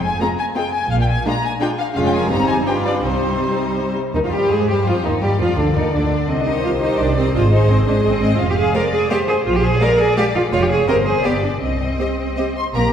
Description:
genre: quick classical-period movement for string orchestra.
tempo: 169 BPM.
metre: 3/4.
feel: rubato.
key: C minor.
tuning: A4 = 445 Hz.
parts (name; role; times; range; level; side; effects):
rich symphonic violin section; melody; 0.0-12.9 s; C5 to C6; -24 LUFS; left 4 dB; none.
bright studio cello section; bass; 0.0-12.9 s; F2 to Bb4; -21 LUFS; right 2 dB; none.
rich studio double bass section; bass; 0.0-12.8 s; F1 to Ab2; -21 LUFS; right 1 dB; none.
bright studio violin section; second line; 0.2-12.8 s; D4 to F5; -26 LUFS; left 2 dB; none.
warm studio viola section; accompaniment; 0.2-12.9 s; D3 to Ab4; -22 LUFS; equal; none.
room: wet scoring stage reverb, RT60 1.8 s.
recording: heard from further back in the room.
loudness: -15 LUFS.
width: side -8 dB against mid.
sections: 0.0-4.1 A section; 4.1-12.7 A section.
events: none.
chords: 0.0 Fm; 0.9 Bb7; 2.0 Db/F; 2.3 Cm/G; 2.7 G7; 3.0 Cm; 5.2 N.C.; 6.3 Cm; 7.3 Ab; 8.4 Fm; 9.5 Bb7; 10.5 Db/F; 10.9 Cm/G; 11.2 G7(no3); 11.6 Cm.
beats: 0.20 0.56 | 0.91 1.26 1.61 | 1.96 2.31 2.67 | 3.04 3.41 3.78 | 4.15 4.51 4.87 | 5.22 5.58 5.93 | 6.29 6.64 6.99 | 7.34 7.69 8.04 | 8.39 8.75 9.10 | 9.45 9.81 10.16 | 10.52 10.88 11.24 | 11.62 11.99 12.37 | 12.75.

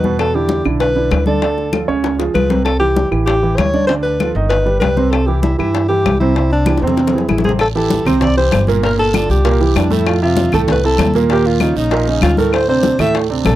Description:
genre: Afro-Cuban jazz.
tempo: 194 BPM.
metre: 4/4.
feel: straight.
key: C major.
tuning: A4 = 441 Hz.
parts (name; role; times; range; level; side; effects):
warm alto saxophone; melody; 0.0-13.6 s; C4 to E5; -17 LUFS; left 1 dB; none.
warm grand piano; accompaniment; 0.0-13.6 s; A2 to E5; -18 LUFS; right 5 dB; none.
upright bass; bass; 0.0-13.6 s; G1 to G2; -18 LUFS; equal; none.
bongos; percussion; 0.0-13.6 s; none; -23 LUFS; left 7 dB; none.
congas; percussion; 0.0-13.6 s; none; -21 LUFS; left 3 dB; none.
claves; percussion; 0.2-13.6 s; none; -26 LUFS; left 10 dB; none.
guiro; percussion; 7.6-13.6 s; none; -31 LUFS; right 11 dB; none.
room: little or no reverb.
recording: dry, close 1970s-style studio recording.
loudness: -12 LUFS.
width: side -14 dB against mid.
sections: 0.0-7.6 A section; 7.6-13.6 B section.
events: drum fill 2.0-2.7, 6.7-7.6.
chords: 0.2 Em7; 1.4 Dm; 2.0 Db7; 2.7 C; 3.3 A7; 3.9 Dm; 4.5 Gaug; 5.1 C; 7.0 Eaug; 7.6 Am7; 8.8 Gm7; 9.4 C7; 10.1 Fmaj7; 11.3 D#sus2; 12.5 D5.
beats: | 0.19 0.50 0.81 1.12 | 1.43 1.73 2.04 2.35 | 2.66 2.97 3.28 3.59 | 3.89 4.20 4.51 4.82 | 5.13 5.44 5.75 6.06 | 6.36 6.67 6.98 7.29 | 7.60 7.91 8.22 8.53 | 8.83 9.14 9.45 9.76 | 10.07 10.37 10.68 10.99 | 11.30 11.61 11.91 12.22 | 12.53 12.84 13.15 13.46.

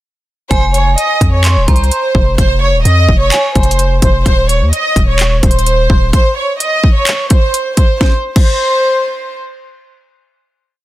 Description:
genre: hip hop, trap.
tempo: 128 BPM.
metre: 4/4.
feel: half-time.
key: F minor.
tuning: A4 = 443 Hz.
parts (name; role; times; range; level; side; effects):
warm studio violin section; melody; 0.5-9.4 s; C5 to Eb5; -14 LUFS; right 1 dB; ping-pong delay.
metallic FM bell; second line; 0.5-3.8 s; Ab5 to C6; -20 LUFS; right 2 dB; chorus, tremolo, ping-pong delay.
long sustained 808-style bass; bass; 0.5-6.1 s; Eb1 to F2; -12 LUFS; equal; none.
trap drum kit; drums; 0.5-8.5 s; crash cymbal, handclaps, hi-hat, kick drum, snare drum; -12 LUFS; equal; overdrive.
room: little or no reverb.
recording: dense, heavily limited modern master.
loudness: -9 LUFS.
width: side -15 dB against mid.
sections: 0.5-8.0 verse; 8.0-10.8 final note.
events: none.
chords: 0.5 Fm; 4.3 Cm/Eb; 6.1 N.C..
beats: | 0.51 0.98 1.45 1.91 | 2.38 2.85 3.32 3.79 | 4.26 4.73 5.20 5.66 | 6.13 6.60 7.07 7.54 | 8.01 8.48 8.95.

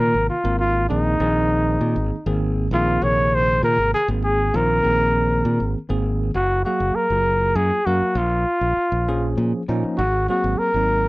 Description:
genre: electric jazz fusion.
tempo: 66 BPM (dotted quarters).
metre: 6/8.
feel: straight.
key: Bb minor.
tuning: A4 = 440 Hz.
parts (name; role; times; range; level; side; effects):
mellow trumpet; melody; 0.0-11.1 s; Eb4 to Db5; -20 LUFS; equal; none.
bell-like tine electric piano; accompaniment; 0.0-11.1 s; C3 to F5; -25 LUFS; right 1 dB; medium stereo tremolo.
modern bright fingered electric bass; bass; 0.0-11.1 s; Gb1 to Bb2; -22 LUFS; equal; none.
room: little or no reverb.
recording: dry, close 1970s-style studio recording.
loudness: -18 LUFS.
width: side -21 dB against mid.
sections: 0.0-6.4 A section; 6.4-11.1 B section.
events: none.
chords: 0.0 Bb9sus4; 6.4 Gbmaj9; 8.2 Bbm7; 10.0 Ab9.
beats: 0.00 | 0.91 1.82 | 2.73 3.63 | 4.54 5.45 | 6.36 7.27 | 8.18 9.08 | 9.99 10.90.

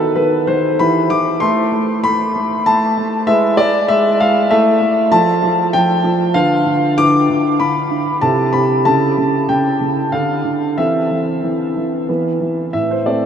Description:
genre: classical-period piano sonatina.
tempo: 96 BPM.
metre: 3/4.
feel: rubato.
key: A minor from 5.1 s.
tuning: A4 = 440 Hz.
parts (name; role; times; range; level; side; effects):
warm concert grand piano; solo; 0.0-13.3 s; A2 to D6; -13 LUFS; equal; none.
room: wet huge ambient reverb, RT60 8.2 s.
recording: in a vast, echoing space.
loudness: -13 LUFS.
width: side -8 dB against mid.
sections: 0.0-12.7 A section.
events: none.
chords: 0.0 B/D#; 0.8 Em; 1.4 Am; 3.3 E/G#; 4.5 A5; 5.1 F; 6.3 Bdim/D; 7.0 E5/D; 8.2 Am/C; 8.9 A7/C#; 10.1 Dm; 10.8 Am/E; 12.1 E5; 12.7 Am.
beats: 0.17 0.79 | 1.42 2.04 2.66 | 3.28 3.89 4.51 | 5.12 5.73 6.34 | 6.99 7.61 8.22 | 8.85 9.49 10.12 | 10.77 11.43 12.09 | 12.73.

